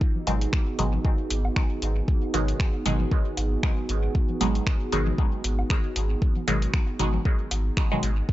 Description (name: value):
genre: dub techno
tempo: 116 BPM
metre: 4/4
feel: swing 56% on 16ths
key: unclear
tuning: A4 = 440 Hz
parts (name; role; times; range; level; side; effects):
- dark analog pad; sustained chords; 0.0-8.3 s; Cb4 to Ab4; -33 LUFS; right 3 dB; chorus, vintage 12-bit sampler grit, sidechain pumping
- electronic kick drum; drums; 0.0-8.3 s; none; -23 LUFS; equal; none
- congas and woodblock; percussion; 0.2-7.6 s; none; -37 LUFS; left 3 dB; sidechain pumping on perc, dub echo
- filtered dub chord stab; stabs; 0.3-8.1 s; Cb3 to Ab3; -29 LUFS; right 1 dB; phaser, sidechain pumping, dub echo
- pure sine sub bass; bass; 0.3-8.2 s; Ab1; -26 LUFS; equal; sidechain pumping
- soft vintage rhythm box; drums; 0.3-8.1 s; finger snaps, hi-hat; -32 LUFS; equal; dub echo
room: digital ambience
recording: dry, gritty hardware recording, transformer saturation, nothing above 7.7 kHz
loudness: -22 LUFS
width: side -15 dB against mid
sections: 0.0-8.3 A section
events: none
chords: 0.0 Abm7